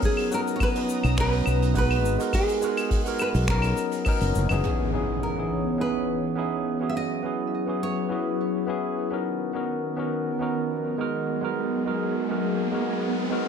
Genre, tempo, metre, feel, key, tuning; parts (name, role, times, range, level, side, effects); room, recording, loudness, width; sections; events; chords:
sunset chillout; 104 BPM; 4/4; straight; C# dorian; A4 = 440 Hz
barky tine electric piano; accompaniment; 0.0-13.5 s; E3 to B4; -28 LUFS; moving between left 7 dB and right 7 dB; auto-pan, diffuse ambient delay
airy breathy pad; sustained chords; 0.0-13.5 s; D#3 to D#6; -30 LUFS; equal; chorus
electronic kick drum; drums; 0.0-4.2 s; -26 LUFS; equal
jazz brush drum kit; drums; 0.0-4.6 s; claves, finger snaps, hi-hat, shaker; -32 LUFS; left 1 dB
nylon-string guitar; melody; 0.1-8.9 s; G#4 to E5; -30 LUFS; equal; analog delay
fretless electric bass; bass; 1.0-4.6 s; F#1 to B1; -23 LUFS; equal
impact and riser; sound effects; 4.6-13.5 s; -32 LUFS; right 2 dB
moderate plate reverb, RT60 1.1 s, studio ambience; dreamy mix soaked in reverb; -23 LUFS; side -7 dB against mid
0.0-4.6 A section; 4.6-13.5 B section
impact 4.6-6.9; filter sweep on analog synth pad 4.6-13.5; riser 10.4-13.5
0.0 Bmaj7; 2.0 G#m7; 3.5 Bmaj7; 4.6 C#m7; 6.9 F#7sus4; 9.3 Bmaj7; 11.3 G#m7